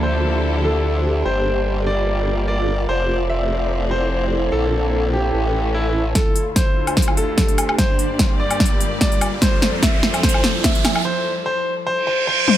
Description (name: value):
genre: heavy wobble dubstep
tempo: 147 BPM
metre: 4/4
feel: swing 53% on 16ths, half-time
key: D minor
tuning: A4 = 441 Hz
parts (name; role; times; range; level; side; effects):
- bright grand piano; melody; 0.0-12.6 s; E4 to E5; -23 LUFS; left 1 dB; tape echo
- clear studio string section; sustained chords; 0.0-11.0 s; D2 to D5; -28 LUFS; left 1 dB; sidechain pumping, low-pass filter
- formant-sweep wobble bass; bass; 0.0-6.1 s; F1 to D2; -20 LUFS; equal; chorus, overdrive
- granular cloud pad; texture; 0.0-11.1 s; F3 to D5; -26 LUFS; equal; built-in reverb, sidechain pumping
- big-room dance drum kit; drums; 6.2-12.6 s; hi-hat, snare drum, toms, woodblock; -19 LUFS; left 1 dB; overdrive, low-pass filter on snare, small room reverb, low-pass filter on hats, low-pass filter on perc, low-pass filter on toms
- electronic kick drum; drums; 6.2-10.7 s; none; -19 LUFS; equal; overdrive, small room reverb
- riser and reverse cymbal; sound effects; 7.2-12.6 s; none; -25 LUFS; right 4 dB; none
room: light reverb, digital ambience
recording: none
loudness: -16 LUFS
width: side -12 dB against mid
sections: 0.0-6.2 A section; 6.2-12.6 B section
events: build-up 6.2-12.6; drum fill 6.2-11.1; riser 7.2-11.1; break 11.1-12.6; reverse cymbal 12.0-12.6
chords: 0.0 Dmadd9; 1.3 Gm; 2.9 F; 4.5 Bbadd9; 5.3 A; 6.2 Dmadd9; 7.8 Gm; 9.4 F; 11.1 N.C.